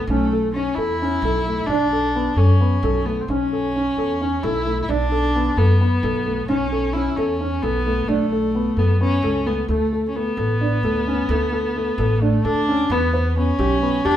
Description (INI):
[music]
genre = contemporary instrumental, chamber music in an uneven meter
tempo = 262 BPM (eighths)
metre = 7/8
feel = straight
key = unclear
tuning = A4 = 440 Hz
[part]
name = warm viola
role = second line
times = 0.0-14.2 s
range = A3 to E4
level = -22 LUFS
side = left 1 dB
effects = none
[part]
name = dark baby grand piano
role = arpeggios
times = 0.1-14.2 s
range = A3 to B4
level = -23 LUFS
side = equal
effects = none
[part]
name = upright bass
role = bass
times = 0.1-14.2 s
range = A1 to F#2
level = -22 LUFS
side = equal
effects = none
[sound]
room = wet studio reverb, RT60 0.9 s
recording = heard from further back in the room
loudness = -18 LUFS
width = side -11 dB against mid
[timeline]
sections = 0.0-9.7 A section; 9.7-14.2 B section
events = none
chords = 0.1 A/B; 1.7 Bm7; 3.3 A/B; 4.9 Bm7; 6.5 A/B; 8.1 B7(no3); 9.7 D5; 12.9 Em